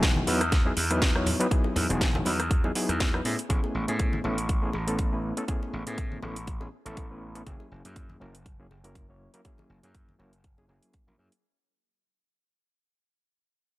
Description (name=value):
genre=nu-disco, nu disco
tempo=121 BPM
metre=4/4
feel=swing 55% on 16ths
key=unclear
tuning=A4 = 440 Hz
part: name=overdriven reed electric piano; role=accompaniment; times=0.0-11.3 s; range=F#3 to C#5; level=-30 LUFS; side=left 1 dB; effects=medium tremolo, sidechain pumping, slapback echo
part: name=gritty slap bass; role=bass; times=0.0-11.3 s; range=E1 to A2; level=-31 LUFS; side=equal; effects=overdrive
part: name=electronic kick drum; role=drums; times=0.0-11.0 s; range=none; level=-27 LUFS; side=equal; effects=none
part: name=house drum kit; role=drums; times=0.0-11.4 s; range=hi-hat, rim click, snare drum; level=-30 LUFS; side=right 1 dB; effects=none
part: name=congas and bongos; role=percussion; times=0.2-10.7 s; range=none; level=-36 LUFS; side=left 1 dB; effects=none
room=digital ambience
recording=none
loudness=-24 LUFS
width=side -18 dB against mid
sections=0.0-11.4 A section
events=fade-out 0.0-11.4; filter sweep on slap bass 0.0-11.4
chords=0.0 Emaj9; 3.2 Amaj9; 7.5 F#7